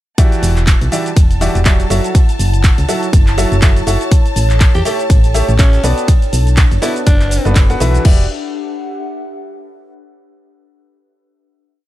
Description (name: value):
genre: piano house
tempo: 122 BPM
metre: 4/4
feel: swing 57% on 16ths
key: E dorian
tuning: A4 = 442 Hz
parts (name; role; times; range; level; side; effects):
- bright studio violin section; sustained chords; 0.2-8.1 s; A5; -28 LUFS; left 3 dB; sidechain pumping
- clear upright piano; riff; 0.2-8.2 s; E3 to F#5; -20 LUFS; equal; sidechain pumping, dub echo
- electronic kick drum; drums; 0.2-8.2 s; none; -10 LUFS; equal; none
- punchy analog drum machine; drums; 0.2-8.2 s; cabasa, crash cymbal, handclaps, hi-hat, ride cymbal; -21 LUFS; right 1 dB; none
- warbly tape-like pad; texture; 0.9-10.0 s; G3 to G5; -24 LUFS; equal; chorus, built-in reverb, sidechain pumping
- solid FM bass; bass; 0.4-8.3 s; E1 to E2; -14 LUFS; equal; sidechain pumping
- raspy alto saxophone; melody; 4.7-7.6 s; C#4 to G4; -24 LUFS; equal; dub echo
room: digital ambience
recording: none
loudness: -10 LUFS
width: side -14 dB against mid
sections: 0.2-8.1 drop; 8.1-10.0 final chord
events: drop 0.2-8.1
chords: 0.2 Em9; 1.9 F#m7; 4.1 A7; 5.8 Bm7; 8.1 Em9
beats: | 0.18 0.67 1.17 1.66 | 2.15 2.64 3.13 3.62 | 4.12 4.61 5.10 5.59 | 6.08 6.57 7.07 7.56 | 8.05 8.54 9.03 9.53